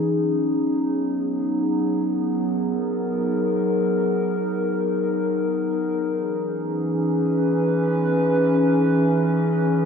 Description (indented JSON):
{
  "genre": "ambient",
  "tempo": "free time",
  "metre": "none",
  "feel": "none",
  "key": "C# dorian",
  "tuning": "A4 = 439 Hz",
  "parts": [
    { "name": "warbly tape-like pad", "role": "solo", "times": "0.0-9.9 s", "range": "E3 to B4", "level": "-20 LUFS", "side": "equal", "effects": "chorus, built-in reverb, ping-pong delay" }
  ],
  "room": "wet concert hall reverb, RT60 1.9 s",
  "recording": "none",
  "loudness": "-20 LUFS",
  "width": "side -6 dB against mid",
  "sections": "0.0-9.9 A section",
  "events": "none",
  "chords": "0.0 G#m9; 6.0 C#m9"
}